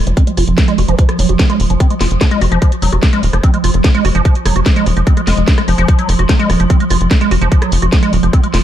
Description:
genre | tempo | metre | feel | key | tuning
psychedelic trance | 147 BPM | 4/4 | straight | F phrygian | A4 = 440 Hz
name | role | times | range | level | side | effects
swarming drone | sustained chords | 0.0-8.6 s | F3 | -19 LUFS | right 3 dB | built-in reverb, sidechain pumping
tight sequencer bass | bass | 0.0-8.6 s | Eb1 to F1 | -14 LUFS | equal | none
liquid acid bass | riff | 0.1-8.6 s | F3 to Gb4 | -18 LUFS | moving between left 7 dB and right 7 dB | chorus, auto-pan, sidechain pumping, tape echo
garage drum kit | drums | 0.1-8.6 s | hi-hat, rim click, snare drum | -20 LUFS | equal | none
electronic kick drum | drums | 0.2-8.4 s | none | -11 LUFS | equal | none
room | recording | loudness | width
digital ambience | dark, warm production | -10 LUFS | side -11 dB against mid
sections
0.0-8.6 A section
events
filter sweep on acid bass 0.0-8.6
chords
0.0 F5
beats
0.17 0.58 | 0.99 1.39 1.80 2.21 | 2.62 3.03 3.44 3.84 | 4.25 4.66 5.07 5.48 | 5.88 6.29 6.70 7.11 | 7.52 7.92 8.33

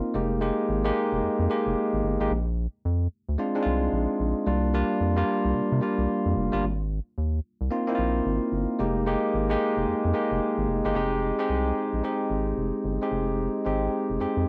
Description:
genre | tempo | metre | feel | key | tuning
R&B, new jack swing | 111 BPM | 4/4 | swing 62% on 16ths | F dorian | A4 = 440 Hz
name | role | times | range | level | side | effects
barky tine electric piano | accompaniment | 0.0-14.5 s | G3 to G4 | -27 LUFS | equal | cassette tape
round analog bass | bass | 0.1-14.5 s | F1 to C3 | -30 LUFS | equal | none
room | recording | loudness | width
wet small room reverb, RT60 0.6 s | home recording on cassette | -26 LUFS | mono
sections
0.0-11.0 A section; 11.0-14.5 B section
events
none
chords
0.1 Fm11; 2.3 Bb7; 4.5 C9sus4; 6.6 Ab6; 8.8 Fm11; 11.0 Fm7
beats
| 0.15 0.69 1.23 1.77 | 2.31 2.85 3.39 3.93 | 4.47 5.01 5.55 6.09 | 6.63 7.17 7.71 8.26 | 8.79 9.34 9.88 10.42 | 10.96 11.50 12.04 12.58 | 13.12 13.66 14.20

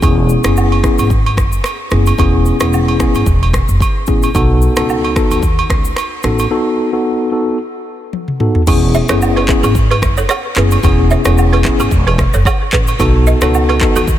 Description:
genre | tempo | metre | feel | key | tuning
afrobeats | 111 BPM | 4/4 | swing 55% on 16ths | E major | A4 = 440 Hz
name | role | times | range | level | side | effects
mellow tine electric piano | accompaniment | 0.0-14.1 s | B3 to A4 | -16 LUFS | left 2 dB | fast stereo tremolo
upright bass | bass | 0.0-14.2 s | E1 to D#2 | -14 LUFS | equal | none
afro-pop drum kit | drums | 0.0-14.2 s | crash cymbal, finger snaps, handclaps, kick drum, rim click, shaker, toms | -16 LUFS | equal | none
agogo bells and woodblock | percussion | 0.0-14.1 s | none | -21 LUFS | right 4 dB | none
balafon | riff | 8.9-14.0 s | E4 to E5 | -20 LUFS | right 5 dB | ping-pong delay
room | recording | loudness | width
light reverb, small room ambience | none | -10 LUFS | side -12 dB against mid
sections
0.0-8.7 A section; 8.7-14.2 B section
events
break 6.5-8.7; drum fill 8.1-8.7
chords
0.0 E6; 4.3 B7; 8.7 E6; 13.0 B7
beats
| 0.02 0.56 1.10 1.65 | 2.19 2.73 3.27 3.81 | 4.35 4.89 5.43 5.97 | 6.51 7.05 7.59 8.13 | 8.67 9.21 9.75 10.29 | 10.83 11.37 11.91 12.46 | 13.00 13.54 14.08

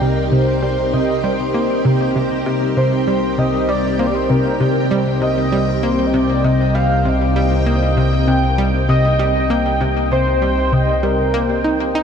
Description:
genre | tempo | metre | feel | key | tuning
ambient, sequencer-driven space music | 98 BPM | 4/4 | straight | C minor | A4 = 441 Hz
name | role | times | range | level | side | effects
string machine, full ensemble | sustained chords | 0.0-12.0 s | C4 to Bb4 | -20 LUFS | equal | ensemble chorus
analog pluck | riff | 0.0-12.0 s | C3 to Eb4 | -19 LUFS | equal | chorus, ping-pong delay
fat analog bass | bass | 0.0-12.0 s | C2 | -21 LUFS | equal | none
bubbling stepped-filter texture | texture | 0.0-12.0 s | G5 | -30 LUFS | right 1 dB | chorus, built-in reverb
pulse-width lead | melody | 0.3-12.0 s | Bb4 to G5 | -20 LUFS | equal | chorus, vintage 12-bit sampler grit, ping-pong delay
room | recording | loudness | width
wet huge ambient reverb, RT60 7.4 s | in a vast, echoing space | -14 LUFS | side -7 dB against mid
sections
0.0-12.0 A section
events
fade-in on synth texture 0.0-12.0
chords
0.0 Cm7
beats
| 0.01 0.62 1.24 1.85 | 2.46 3.07 3.69 4.30 | 4.91 5.52 6.14 6.75 | 7.36 7.97 8.59 9.20 | 9.81 10.42 11.03 11.65

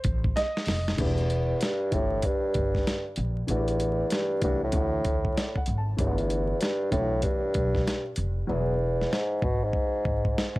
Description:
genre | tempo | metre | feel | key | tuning
hip hop, jazz-hop | 96 BPM | 4/4 | swing 64% on 16ths | unclear | A4 = 440 Hz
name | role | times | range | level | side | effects
warm upright piano | accompaniment | 0.0-8.7 s | E3 to A5 | -33 LUFS | left 1 dB | none
upright bass | bass | 0.0-10.3 s | E1 to D2 | -29 LUFS | equal | none
dusty soul sampler-style drum kit | drums | 0.0-10.6 s | crash cymbal, hi-hat, kick drum, snare drum | -29 LUFS | equal | overdrive
mellow bassoon | melody | 1.0-10.6 s | E2 to B2 | -28 LUFS | equal | analog delay
room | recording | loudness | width
little or no reverb | vinyl crackle | -24 LUFS | side -20 dB against mid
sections
1.0-10.6 A section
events
drum fill 0.4-1.0; upright piano fill 5.0-6.0; hi-hats muted 8.5-10.6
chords
0.0 F7; 1.0 Em7; 3.5 Am7; 4.7 D; 6.0 G6; 8.5 E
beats
0.36 | 0.99 1.61 2.24 2.86 | 3.49 4.11 4.74 5.36 | 5.99 6.61 7.24 7.86 | 8.49 9.11 9.74 10.36

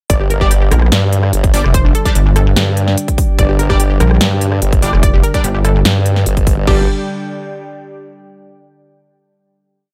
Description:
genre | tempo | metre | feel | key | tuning
heavy wobble dubstep | 146 BPM | 4/4 | half-time | G minor | A4 = 440 Hz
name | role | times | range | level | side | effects
unison pluck | melody | 0.1-6.8 s | D4 to D5 | -25 LUFS | equal | tape echo
lush unison pad | sustained chords | 0.1-6.9 s | D3 to G5 | -27 LUFS | equal | chorus, sidechain pumping
formant-sweep wobble bass | bass | 0.1-6.9 s | G1 to G2 | -16 LUFS | equal | chorus, overdrive
big-room dance drum kit | drums | 0.1-6.8 s | crash cymbal, kick drum | -17 LUFS | equal | overdrive
big-room dance drum kit | drums | 0.1-6.6 s | hi-hat, rim click, snare drum | -21 LUFS | equal | overdrive
warbly tape-like pad | texture | 1.1-8.3 s | D4 to G5 | -30 LUFS | equal | chorus, built-in reverb, sidechain pumping
supersaw stab | stabs | 0.4-6.8 s | G3 to D5 | -24 LUFS | equal | tape echo
pulsing pluck wobble bass | bass | 0.7-5.8 s | F1 to Bb1 | -14 LUFS | equal | chorus, overdrive
room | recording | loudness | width
digital ambience | none | -13 LUFS | mono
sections
0.1-6.7 drop; 6.7-8.3 final chord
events
drop 0.1-6.7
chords
0.1 G5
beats
| 0.10 0.51 0.92 1.33 | 1.74 2.15 2.56 2.98 | 3.39 3.80 4.21 4.62 | 5.03 5.44 5.85 6.26 | 6.67 7.08 7.50 7.91

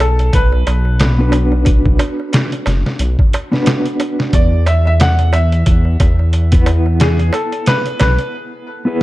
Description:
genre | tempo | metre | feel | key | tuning
trip hop | 90 BPM | 4/4 | swing 57% on 16ths | B dorian | A4 = 440 Hz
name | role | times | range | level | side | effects
felt-muted upright piano | melody | 0.0-8.3 s | G#4 to F#5 | -21 LUFS | equal | tape echo
dark detuned saw bass | bass | 0.0-8.2 s | F#1 to E2 | -13 LUFS | equal | none
trip hop sampler-style drum kit | drums | 0.0-8.3 s | hi-hat, kick drum, snare drum | -14 LUFS | equal | none
darbuka | percussion | 0.0-8.3 s | none | -26 LUFS | right 3 dB | none
mellow electric guitar | accompaniment | 1.2-9.0 s | B3 to B4 | -20 LUFS | equal | tremolo, vintage 12-bit sampler grit, tape echo
room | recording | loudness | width
digital ambience | dark, warm production | -11 LUFS | side -17 dB against mid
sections
0.0-9.0 A section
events
break 8.3-9.0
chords
0.0 Bm; 4.3 E5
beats
0.34 1.00 | 1.67 2.34 3.00 3.67 | 4.34 5.00 5.67 6.34 | 7.00 7.67 8.34 9.00

